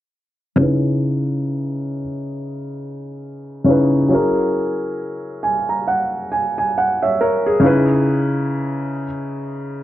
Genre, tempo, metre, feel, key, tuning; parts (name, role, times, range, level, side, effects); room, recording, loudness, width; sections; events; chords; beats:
hip hop; 68 BPM; 4/4; swing 58% on 16ths; C# dorian; A4 = 440 Hz
felt-muted upright piano; accompaniment; 0.6-9.8 s; C#3 to A#5; -17 LUFS; equal; low-pass filter
wet small room reverb, RT60 0.5 s; dark, warm production; -16 LUFS; side -14 dB against mid
0.6-9.8 A section
filter sweep on felt piano 0.6-9.8; felt piano fill 5.0-7.6
0.6 C#m9; 4.1 F#9; 7.6 C#m9
| 0.58 1.47 2.35 3.23 | 4.11 5.00 5.88 6.76 | 7.64 8.53 9.41